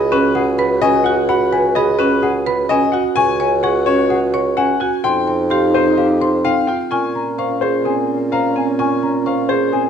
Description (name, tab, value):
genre	classical, minimalist pattern music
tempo	128 BPM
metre	4/4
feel	straight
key	unclear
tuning	A4 = 440 Hz
part	clear grand piano	melody	0.0-9.9 s	G4 to G#5	-20 LUFS	left 7 dB	none
part	mellow alto flute	second line	0.0-9.9 s	Db4 to F#4	-21 LUFS	right 2 dB	none
part	celesta	arpeggios	0.0-9.9 s	F5 to C#6	-21 LUFS	left 4 dB	none
part	marimba with medium mallets	arpeggios	0.0-9.9 s	C4 to C#5	-20 LUFS	right 6 dB	none
part	warm bassoon	bass	0.0-9.9 s	C#2 to Bb2	-21 LUFS	equal	none
room	moderate recital hall reverb, RT60 1.5 s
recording	dark, warm production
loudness	-14 LUFS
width	side -8 dB against mid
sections	0.0-6.9 A section; 6.9-9.9 B section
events	none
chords	0.0 G#m7/C#; 3.2 C#sus4; 5.0 F5; 6.9 Bbm7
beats	0.36 0.82 | 1.29 1.76 2.23 2.70 | 3.17 3.64 4.11 4.58 | 5.04 5.51 5.98 6.45 | 6.92 7.39 7.86 8.32 | 8.79 9.26 9.73